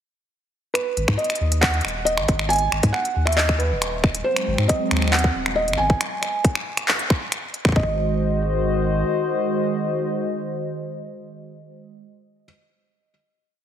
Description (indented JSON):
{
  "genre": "IDM",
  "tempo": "137 BPM",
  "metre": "4/4",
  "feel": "straight",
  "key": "unclear",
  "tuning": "A4 = 440 Hz",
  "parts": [
    { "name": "felt-muted upright piano", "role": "melody", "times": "0.7-12.4 s", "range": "B4 to G#5", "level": "-24 LUFS", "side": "right 1 dB", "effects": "tape echo" },
    { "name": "organic electronic drum kit", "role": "drums", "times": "0.8-7.7 s", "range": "finger snaps, handclaps, hi-hat", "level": "-24 LUFS", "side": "equal", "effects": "overdrive" },
    { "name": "warm sub bass", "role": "bass", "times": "1.0-9.0 s", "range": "D#1 to G#2", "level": "-23 LUFS", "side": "equal", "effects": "none" },
    { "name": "electronic kick drum", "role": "drums", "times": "1.1-7.9 s", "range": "none", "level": "-20 LUFS", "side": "equal", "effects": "overdrive" },
    { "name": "hollow soft pad", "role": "sustained chords", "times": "4.3-12.0 s", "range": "D#3 to D#5", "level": "-24 LUFS", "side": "equal", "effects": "chorus" }
  ],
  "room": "light reverb, digital ambience",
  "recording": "heavily compressed radio sound, multiband compression",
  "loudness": "-19 LUFS",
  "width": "side -9 dB against mid",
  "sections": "0.8-7.8 groove; 7.8-11.3 final chord",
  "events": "none",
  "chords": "0.8 G#m7; 4.3 G#7; 6.0 N.C.; 7.8 G#7"
}